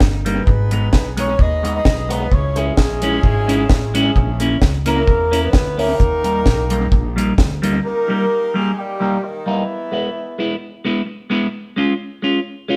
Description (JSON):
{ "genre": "ska", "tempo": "130 BPM", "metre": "4/4", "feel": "swing 54% on 8ths", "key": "unclear", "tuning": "A4 = 441 Hz", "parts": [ { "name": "mellow horn section", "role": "melody", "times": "0.0-10.9 s", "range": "D#3 to D#5", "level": "-24 LUFS", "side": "equal", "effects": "none" }, { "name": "upright bass", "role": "bass", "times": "0.0-7.8 s", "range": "G1 to E2", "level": "-24 LUFS", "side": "equal", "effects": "none" }, { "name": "deep reggae drum kit", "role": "drums", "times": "0.0-7.7 s", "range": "hi-hat, kick drum, snare drum", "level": "-19 LUFS", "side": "equal", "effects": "analog delay" }, { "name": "semi-hollow electric guitar", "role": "accompaniment", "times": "0.3-12.8 s", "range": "G3 to E#4", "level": "-22 LUFS", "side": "equal", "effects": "phaser" } ], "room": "moderate stone room reverb, RT60 1.0 s", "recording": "band playing live in one room", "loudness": "-18 LUFS", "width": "mono", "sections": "0.0-7.8 A section; 7.8-12.8 B section", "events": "none", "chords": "0.5 G#m; 2.3 C#m; 4.2 A#dim; 6.0 D#; 9.7 E; 11.5 C#" }